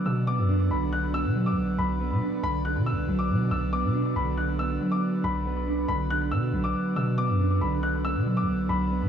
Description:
hip hop; 139 BPM; 4/4; half-time; B minor; A4 = 440 Hz
dark baby grand piano; melody; 0.0-9.1 s; B5 to F#6; -31 LUFS; left 4 dB; tape echo
mellow electric guitar; accompaniment; 0.0-9.1 s; D3 to D4; -28 LUFS; right 2 dB; tape echo
airy breathy pad; sustained chords; 0.0-9.1 s; B3 to D5; -38 LUFS; right 1 dB; chorus
long sustained 808-style bass; bass; 0.1-9.1 s; B1 to B2; -27 LUFS; equal
light reverb, digital ambience; echo-heavy mix, studio reverb; -24 LUFS; side -8 dB against mid
0.0-9.1 A section
0.0 Bm

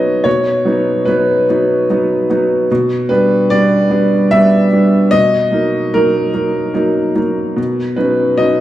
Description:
neoclassical minimalist piano; 74 BPM; 3/4; rubato; A4 = 440 Hz
clear upright piano; solo; 0.0-8.6 s; B2 to E5; -11 LUFS; equal
wet recital hall reverb, RT60 1.7 s; recorded in a church or concert hall; -11 LUFS; side -13 dB against mid
0.0-8.6 A section
0.0 Badd9; 2.7 G/B; 5.1 D#m/B; 7.6 Badd9

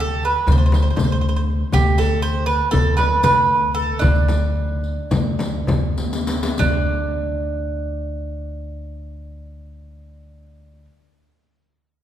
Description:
Turkish makam ensemble; 192-240 BPM (eighths); 9/8; straight; D makam huseyni; A4 = 442 Hz
mandolin; melody; 0.0-10.8 s; D4 to C5; -21 LUFS; right 3 dB
upright bass; bass; 0.0-10.9 s; D2; -21 LUFS; equal
darbuka; percussion; 0.2-6.9 s; -26 LUFS; left 2 dB
riq; percussion; 0.2-6.9 s; -29 LUFS; left 2 dB
frame drum; percussion; 0.5-6.9 s; -27 LUFS; left 2 dB
wet concert hall reverb, RT60 2.3 s; recorded in a church or concert hall; -17 LUFS; side -11 dB against mid
0.0-6.6 A section; 6.6-9.4 B section
slowing down 2.2-6.6; drum fill 6.0-6.6

